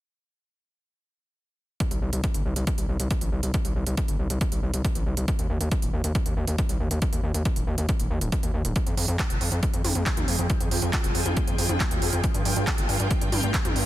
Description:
uplifting trance; 138 BPM; 4/4; straight; C minor; A4 = 442 Hz
big-room dance drum kit; drums; 1.8-13.8 s; handclaps, hi-hat, toms; -30 LUFS; right 2 dB; overdrive, sidechain pumping on hats, sidechain pumping on toms
electronic kick drum; drums; 1.8-13.6 s; -26 LUFS; equal; overdrive
gritty driven synth bass; bass; 1.9-13.8 s; Eb1 to G2; -27 LUFS; equal; sidechain pumping
shimmering ambient pad; sustained chords; 9.5-13.9 s; F3 to G5; -31 LUFS; equal; chorus, built-in reverb, phaser, sidechain pumping
digital ambience; dense, heavily limited modern master; -23 LUFS; side -14 dB against mid
1.8-13.9 A section
1.8 C5; 5.3 N.C.; 8.8 Fmadd9; 12.2 Gm7

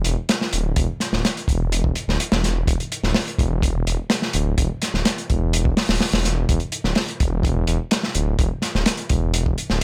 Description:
breakbeat, breaks; 126 BPM; 4/4; straight; A4 = 440 Hz
crunchy breakbeat drum kit; drums; 0.0-9.8 s; hi-hat, kick drum, snare drum; -23 LUFS; equal
detuned saw bass; bass; 0.1-9.8 s; D1 to E1; -24 LUFS; equal; tube saturation
little or no reverb; -21 LUFS; mono
0.0-9.8 A section

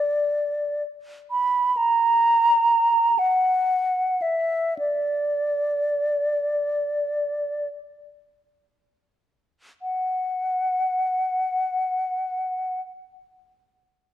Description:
classical, free, expressive piece for unaccompanied flute; 16-44 BPM (dotted quarters); 6/8; rubato; A4 = 440 Hz
mellow hollow silver concert flute; solo; 0.0-12.8 s; D5 to B5; -21 LUFS; equal
moderate recital hall reverb, RT60 1.6 s; dark, warm production; -21 LUFS; side -11 dB against mid
0.0-9.8 A section; 9.8-14.1 B section
slowing down 0.4-9.8

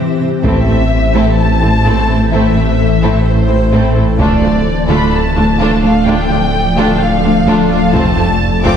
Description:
cinematic, hybrid orchestral and electronic film score; 128 BPM; 4/4; straight; A minor; A4 = 440 Hz
warm symphonic violin section; melody; 0.0-8.8 s; C5 to D6; -18 LUFS; left 2 dB
granular cloud pad; sustained chords; 0.0-8.8 s; E3 to D5; -17 LUFS; left 2 dB; built-in reverb
rich symphonic cello section; bass; 0.0-8.7 s; D2 to C3; -17 LUFS; right 2 dB
warm symphonic violin section; second line; 0.4-8.8 s; C4 to A4; -21 LUFS; left 2 dB
clear symphonic viola section; accompaniment; 0.4-8.8 s; A3 to D4; -19 LUFS; right 1 dB
dark detuned saw bass; bass; 0.4-8.8 s; D1 to A1; -15 LUFS; equal
solo taiko drums; drums; 0.4-1.3, 4.2-5.1, 7.9-8.8 s; -19 LUFS; equal
wet scoring stage reverb, RT60 1.8 s; heard from further back in the room; -9 LUFS; side -8 dB against mid
0.4-8.8 A section
0.4 Am; 4.2 Dm; 7.9 F

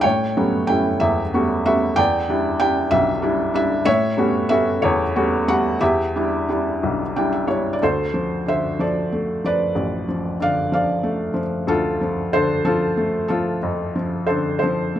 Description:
classical, lyrical solo piano; 62 BPM (dotted quarters); 6/8; rubato; E dorian; A4 = 440 Hz
felt-muted upright piano; solo; 0.0-15.0 s; A1 to G5; -18 LUFS; equal
light reverb; close, detailed microphones; -18 LUFS; side -11 dB against mid
0.0-7.8 A section; 7.8-15.0 B section
felt piano fill 6.8-7.8
0.0 A13; 2.0 Em7; 3.9 A13; 5.8 Em7; 7.8 Dm7

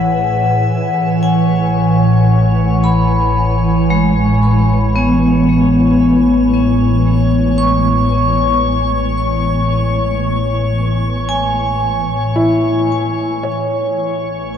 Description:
ambient; 56 BPM; 3/4; straight; A major; A4 = 441 Hz
ethereal airy pad; sustained chords; 0.0-14.6 s; A2 to G#5; -15 LUFS; equal; ensemble chorus, built-in reverb
vibraphone with hard mallets; arpeggios; 0.0-14.6 s; G#3 to C#6; -16 LUFS; left 1 dB; ping-pong delay
deep rumbling drone; bass; 0.0-14.6 s; A1; -22 LUFS; equal; built-in reverb
drifting glass-harmonics texture; texture; 0.0-14.6 s; C#5 to E6; -24 LUFS; left 4 dB; chorus, built-in reverb
felt-muted upright piano; melody; 12.4-14.6 s; E4 to C#5; -16 LUFS; left 1 dB; ping-pong delay
wet huge ambient reverb, RT60 8.2 s; dark, warm production; -12 LUFS; side -8 dB against mid
0.0-13.5 A section; 13.5-14.6 B section
filter sweep on ambient pad 0.0-13.5
0.0 Amaj7

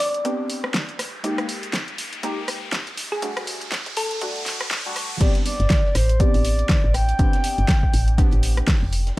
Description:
deep house; 121 BPM; 4/4; swing 58% on 16ths; A minor; A4 = 440 Hz
thumb-piano-like synth pluck; melody; 0.0-4.5 s; G#4 to D5; -27 LUFS; left 1 dB; chorus, analog delay
deep mellow chord stab; stabs; 0.0-9.2 s; G3 to G4; -30 LUFS; equal; chorus, phaser, sidechain pumping
deep house drum kit; drums; 0.0-9.2 s; crash cymbal, hi-hat, rim click, snare drum; -26 LUFS; equal; overdrive, small room reverb
riser; sound effects; 0.0-5.2 s; -32 LUFS; equal
electronic kick drum; drums; 0.2-8.8 s; -20 LUFS; equal; overdrive, high-pass filter on kick, small room reverb
breathy flute-like synth lead; melody; 5.2-8.4 s; C5 to G5; -27 LUFS; equal; chorus, tape echo
woody FM bass; bass; 5.2-9.1 s; F1 to A1; -20 LUFS; equal; sidechain pumping
compact cocktail drum kit; drums; 5.2-9.2 s; hi-hat, snare drum; -40 LUFS; right 3 dB
light reverb; vinyl crackle, high-pass filter; -19 LUFS; side -19 dB against mid
0.0-5.2 A section; 5.2-9.2 B section
build-up 0.0-5.2; riser 0.0-5.2; filter sweep 0.0-5.2; drop 5.2-9.2
0.0 Gadd11/B; 1.0 D#add11/G#; 3.2 Dadd11/G; 5.2 Am11

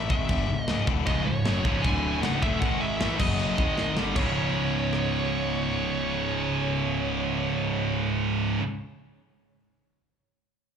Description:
heavy metal; 155 BPM; 4/4; straight; C# minor; A4 = 440 Hz
high-gain lead guitar; melody; 0.0-8.0 s; C#5 to G#5; -32 LUFS; right 2 dB; distortion, digital delay
high-gain distorted guitar; riff; 0.0-8.6 s; C#2 to A3; -29 LUFS; left 7 dB; distortion, slapback echo
fuzz picked electric bass; bass; 0.0-8.6 s; C#1 to A1; -31 LUFS; right 1 dB; overdrive
tight metal drum kit; drums; 0.1-5.0 s; china cymbal, crash cymbal, kick drum, rim click, snare drum; -30 LUFS; equal
scooped high-gain guitar; riff; 1.1-8.6 s; C#2 to A3; -29 LUFS; right 9 dB; distortion, slapback echo
little or no reverb; live gig heard through the venue's PA, club reverb; -24 LUFS; side -7 dB against mid
0.0-4.2 A section; 4.2-7.2 B section
drum fill 3.8-4.2
0.0 C#m; 1.8 D5; 2.2 C#m; 2.6 G#5; 3.0 A5; 3.2 F#5; 3.6 G#5; 4.0 G5; 4.2 C#5

